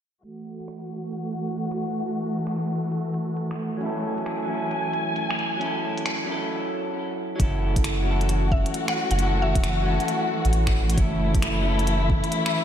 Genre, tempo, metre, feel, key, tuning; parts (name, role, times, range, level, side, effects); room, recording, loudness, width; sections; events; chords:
future garage; 134 BPM; 4/4; swing 64% on 16ths; F# minor; A4 = 440 Hz
dark chamber string section; sustained chords; 0.2-12.6 s; E3 to G#5; -27 LUFS; equal; vintage 12-bit sampler grit, sidechain pumping, low-pass filter
organic electronic drum kit; drums; 0.2-12.5 s; finger snaps, hi-hat; -32 LUFS; equal; studio reverb
electric guitar through a small old amp; accompaniment; 3.8-12.6 s; F#3 to A4; -29 LUFS; equal; vintage 12-bit sampler grit, sidechain pumping, tape echo
soft dub sub bass; bass; 7.4-12.2 s; E1 to A1; -24 LUFS; equal
electronic kick drum; drums; 7.4-12.2 s; -24 LUFS; equal; studio reverb
mallet-like synth pluck; melody; 8.5-9.8 s; E5 to F#5; -31 LUFS; left 1 dB; chorus, analog delay
moderate lush hall reverb, RT60 1.9 s, digital ambience; dreamy mix soaked in reverb, low-pass filter; -22 LUFS; side -9 dB against mid
0.2-7.4 A section; 7.4-12.6 B section
filter sweep on string section 0.2-7.4; filter sweep 0.2-7.4; break 6.5-7.4
0.2 F#m7